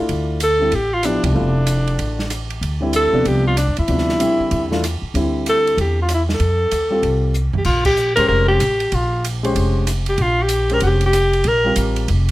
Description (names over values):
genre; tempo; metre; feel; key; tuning
modal jazz; 190 BPM; 4/4; swing 64% on 8ths; D dorian, Bb dorian from 7.7 s; A4 = 444 Hz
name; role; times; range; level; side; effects
dark grand piano; accompaniment; 0.0-12.1 s; C3 to C5; -22 LUFS; left 1 dB; none
upright bass; bass; 0.1-12.3 s; F1 to F2; -20 LUFS; equal; none
open jazz drum kit; drums; 0.1-12.3 s; crash cymbal, hi-hat, kick drum, ride cymbal, rim click, snare drum, toms; -27 LUFS; right 2 dB; none
breathy alto saxophone; melody; 0.4-11.8 s; D4 to Bb4; -18 LUFS; equal; plate reverb
room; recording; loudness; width
light reverb; none; -15 LUFS; side -17 dB against mid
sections
0.0-7.7 A section; 7.7-12.3 B section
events
band accent 1.2, 7.8; drum fill 7.4-7.7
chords
0.0 Dm; 2.6 Amadd9 (rootless); 6.4 F7; 7.7 Bbm69